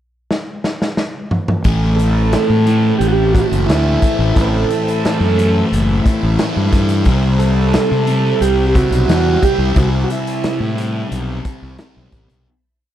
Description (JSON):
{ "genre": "psychedelic rock", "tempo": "89 BPM", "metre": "4/4", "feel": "straight", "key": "A dorian", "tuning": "A4 = 440 Hz", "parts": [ { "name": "raw garage drum kit", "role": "drums", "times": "0.3-12.5 s", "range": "hi-hat, kick drum, snare drum, toms", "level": "-19 LUFS", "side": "equal", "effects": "none" }, { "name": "thick fuzz guitar", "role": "riff", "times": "1.6-12.5 s", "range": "A2 to C4", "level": "-19 LUFS", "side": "left 1 dB", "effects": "distortion, phaser" }, { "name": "fuzz fingered electric bass", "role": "bass", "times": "1.6-12.5 s", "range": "F#1 to C3", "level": "-16 LUFS", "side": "equal", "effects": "overdrive" }, { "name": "string machine, full ensemble", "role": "sustained chords", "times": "1.7-12.5 s", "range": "C5 to B5", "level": "-29 LUFS", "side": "right 4 dB", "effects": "ensemble chorus" }, { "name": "overdriven combo organ", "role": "melody", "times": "2.0-11.1 s", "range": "E4 to B4", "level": "-18 LUFS", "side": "right 4 dB", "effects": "phaser, slapback echo" } ], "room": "little or no reverb", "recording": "dry, close 1970s-style studio recording", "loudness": "-13 LUFS", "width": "side -11 dB against mid", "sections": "0.0-1.7 pickup bar; 1.7-12.5 verse", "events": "drum fill 0.3-1.7; fade-out 9.8-12.5", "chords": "0.0 N.C.; 1.7 Amadd9; 7.1 Cmaj7" }